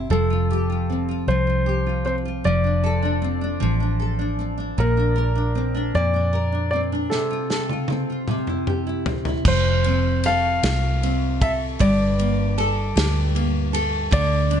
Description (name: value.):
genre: six-eight pop ballad.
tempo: 51 BPM (dotted quarters).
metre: 6/8.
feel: straight.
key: F major.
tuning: A4 = 439 Hz.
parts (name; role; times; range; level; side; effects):
nylon-string guitar; accompaniment; 0.0-14.6 s; G2 to Bb4; -24 LUFS; equal; double-tracked left and right.
vintage muted fingered electric bass; bass; 0.0-14.6 s; F1 to F2; -22 LUFS; equal; none.
warm grand piano; melody; 0.1-14.6 s; A4 to F5; -25 LUFS; left 1 dB; none.
loose indie drum kit; drums; 7.1-14.6 s; crash cymbal, kick drum, ride cymbal, snare drum, toms; -26 LUFS; equal; none.
room: light reverb.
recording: nothing above 10.5 kHz.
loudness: -19 LUFS.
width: side -8 dB against mid.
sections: 0.0-9.5 A section; 9.5-14.6 B section.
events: break 7.1-9.5; drum fill 7.1-9.5.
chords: 0.1 Fadd9; 2.5 Dm7/F; 4.8 Bbadd9; 7.1 F/C; 8.3 C; 9.5 F; 11.8 Gmadd9.